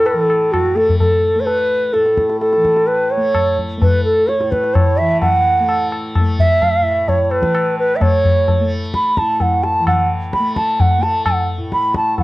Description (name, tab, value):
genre	indian classical, Hindustani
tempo	129 BPM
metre	4/4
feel	straight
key	A raga bhupali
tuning	A4 = 440 Hz
part	bansuri	melody	0.0-12.2 s	F#4 to B5	-15 LUFS	right 1 dB	slapback echo
part	tanpura	drone	0.0-12.2 s	A2 to A3	-24 LUFS	equal	none
part	tabla	percussion	0.1-12.2 s	none	-18 LUFS	left 2 dB	none
room	light reverb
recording	worn, warbling old tape, cassette tape, warbly pitch drift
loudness	-13 LUFS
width	side -18 dB against mid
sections	0.0-12.2 A section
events	none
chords	none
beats	0.06 0.53 1.00 | 1.47 1.94 2.41 2.88 | 3.35 3.82 4.29 4.75 | 5.22 5.69 6.15 6.62 | 7.09 7.55 8.02 8.48 | 8.95 9.41 9.87 10.34 | 10.80 11.26 11.72 12.18